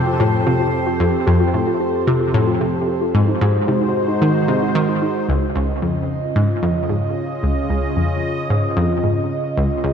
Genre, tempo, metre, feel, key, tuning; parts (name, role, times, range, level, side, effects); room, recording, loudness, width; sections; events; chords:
ambient, sequencer-driven space music; 112 BPM; 4/4; straight; Db major from 5.3 s; A4 = 440 Hz
sweeping resonant pad; sustained chords; 0.0-9.9 s; Db3 to Eb5; -21 LUFS; equal; chorus, shimmer reverb
analog pluck; riff; 0.0-9.9 s; Db2 to Eb3; -19 LUFS; equal; chorus, cassette tape, analog delay
analog drone; bass; 0.0-5.3 s; F2 to Ab2; -29 LUFS; left 1 dB; chorus
bubbling stepped-filter texture; texture; 0.0-5.3 s; C5; -31 LUFS; right 5 dB; chorus, built-in reverb, shimmer reverb
warbly dusty pluck; arpeggios; 0.1-5.1 s; Eb4 to F4; -25 LUFS; left 3 dB; chorus, auto-pan, analog delay, shimmer reverb
wet spring reverb, RT60 2.7 s; echo-heavy mix; -16 LUFS; side -7 dB against mid
0.0-5.3 A section; 5.3-9.9 B section
filter sweep on synth arpeggio sound 0.0-5.3
0.0 Fadd9; 3.1 Ab7; 5.3 Dbadd9